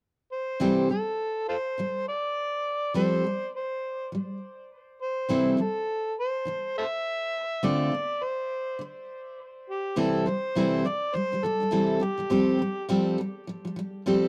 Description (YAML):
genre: pop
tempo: 103 BPM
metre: 4/4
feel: swing 60% on 16ths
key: C major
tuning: A4 = 440 Hz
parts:
  - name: overdriven harmonica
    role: melody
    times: 0.3-12.9 s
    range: F4 to E5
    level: -32 LUFS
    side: equal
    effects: tape echo
  - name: picked steel-string acoustic guitar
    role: accompaniment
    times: 0.6-14.3 s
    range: C3 to A4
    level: -27 LUFS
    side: equal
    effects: none
room: moderate studio reverb, RT60 0.7 s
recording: dry, close 1970s-style studio recording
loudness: -28 LUFS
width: mono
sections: 0.6-10.0 A section; 10.0-14.3 B section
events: none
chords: 0.0 N.C.; 0.6 C6; 3.0 Fadd9; 5.3 C6; 7.6 Dm7; 10.0 C6; 12.3 Fadd9